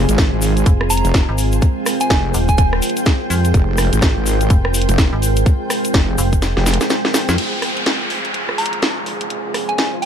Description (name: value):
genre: bass house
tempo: 125 BPM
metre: 4/4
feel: swing 61% on 16ths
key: F minor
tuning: A4 = 440 Hz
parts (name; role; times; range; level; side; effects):
- deep dark ambient pad; sustained chords; 0.0-10.1 s; Ab3 to C5; -24 LUFS; right 1 dB; chorus, built-in reverb, sidechain pumping
- wobble bass; bass; 0.0-6.8 s; F1 to Ab1; -18 LUFS; equal; chorus, overdrive, sidechain pumping
- granular cloud pad; texture; 0.0-10.1 s; F4 to Ab5; -25 LUFS; right 2 dB; built-in reverb, sidechain pumping
- garage drum kit; drums; 0.1-10.1 s; crash cymbal, hi-hat, rim click, snare drum; -20 LUFS; equal; none
- tube shaker; percussion; 0.1-7.4 s; none; -26 LUFS; left 8 dB; none
- electronic kick drum; drums; 0.2-6.4 s; none; -14 LUFS; equal; none
- metallic FM bass; bass; 0.7-7.4 s; Eb1 to F2; -18 LUFS; equal; overdrive, sidechain pumping
- soft synth bell; melody; 0.9-2.7, 8.6-10.1 s; Ab5 to Bb5; -23 LUFS; right 1 dB; chorus, ping-pong delay
- downlifter; sound effects; 7.4-10.1 s; none; -23 LUFS; equal; none
room: light reverb, digital ambience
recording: none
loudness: -14 LUFS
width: side -8 dB against mid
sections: 0.0-7.4 A section; 7.4-10.1 B section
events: drop 0.0-7.4; kick drops out 6.4-7.4; drum fill 6.4-7.4; band accent 7.3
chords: 0.0 Fm